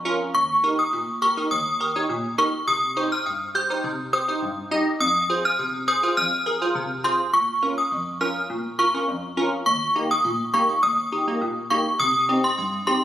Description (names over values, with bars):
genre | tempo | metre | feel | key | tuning
dancehall | 103 BPM | 4/4 | straight | Bb dorian | A4 = 440 Hz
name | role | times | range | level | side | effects
wavetable chord stab | accompaniment | 0.0-13.0 s | Eb2 to Eb5 | -25 LUFS | right 1 dB | none
synth chime | melody | 0.3-13.0 s | C6 to G6 | -22 LUFS | equal | ensemble chorus, phaser, digital delay
room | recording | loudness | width
moderate plate reverb, RT60 2.5 s | recorded on a phone in the room, club reverb | -20 LUFS | side -12 dB against mid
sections
0.0-7.3 A section; 7.3-13.0 B section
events
none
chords
0.3 Eb; 2.7 Cm; 5.0 Fm; 7.3 Bbm; 9.7 Eb; 12.0 Cm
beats
| 0.34 0.93 1.51 2.09 | 2.67 3.26 3.84 4.42 | 5.00 5.59 6.17 6.75 | 7.33 7.92 8.50 9.08 | 9.66 10.25 10.83 11.41 | 11.99 12.58